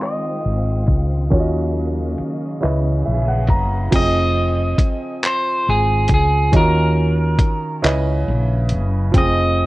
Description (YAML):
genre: slow six-eight R&B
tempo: 46 BPM (dotted quarters)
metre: 6/8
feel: straight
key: F phrygian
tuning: A4 = 443 Hz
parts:
  - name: electric guitar at the edge of break-up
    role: melody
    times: 0.0-9.7 s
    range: Ab4 to Eb5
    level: -20 LUFS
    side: right 1 dB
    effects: slapback echo
  - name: warm concert grand piano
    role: accompaniment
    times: 0.0-9.7 s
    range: Db3 to Bb5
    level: -22 LUFS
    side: right 2 dB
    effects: none
  - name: warm studio string section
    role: sustained chords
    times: 0.0-3.9 s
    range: Db3 to G5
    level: -29 LUFS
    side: left 1 dB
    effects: none
  - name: dusty soul sampler-style drum kit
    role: drums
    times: 0.0-9.3 s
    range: crash cymbal, handclaps, hi-hat, kick drum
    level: -18 LUFS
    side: equal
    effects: none
  - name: woody fretless electric bass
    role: bass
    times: 0.5-9.7 s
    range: F1 to Eb2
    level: -18 LUFS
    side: equal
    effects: none
room: little or no reverb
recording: worn, warbling old tape, cassette tape, warbly pitch drift, low-pass filter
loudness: -15 LUFS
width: side -18 dB against mid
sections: 0.0-3.9 A section; 3.9-9.7 B section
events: filter sweep 0.0-3.9; grand piano fill 2.6-3.9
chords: 0.0 Fm9; 1.3 Ebm9; 2.6 Dbm9; 3.9 Fm9; 6.5 Ebm9; 7.8 Dbm9; 9.1 Fm9